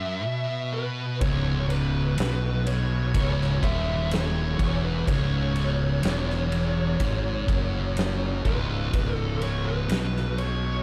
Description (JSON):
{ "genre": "stoner and doom metal", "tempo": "62 BPM", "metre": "4/4", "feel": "straight", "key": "C# minor", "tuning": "A4 = 440 Hz", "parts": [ { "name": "fuzz lead guitar", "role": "melody", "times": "0.0-10.8 s", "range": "B4 to E5", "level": "-35 LUFS", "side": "equal", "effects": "distortion, digital delay" }, { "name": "thick fuzz guitar", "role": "riff", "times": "0.0-10.8 s", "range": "C#2 to B2", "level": "-30 LUFS", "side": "equal", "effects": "distortion" }, { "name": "fuzz fingered electric bass", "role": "bass", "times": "1.2-10.8 s", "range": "C#1 to B1", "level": "-31 LUFS", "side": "equal", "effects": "overdrive" }, { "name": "oversized low-tuned drum kit", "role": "drums", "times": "1.2-10.6 s", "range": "kick drum, ride cymbal, snare drum", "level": "-32 LUFS", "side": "equal", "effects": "none" } ], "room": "small room ambience", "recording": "dark, warm production", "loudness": "-26 LUFS", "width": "mono", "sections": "0.0-10.8 A section", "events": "none", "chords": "0.0 C#m" }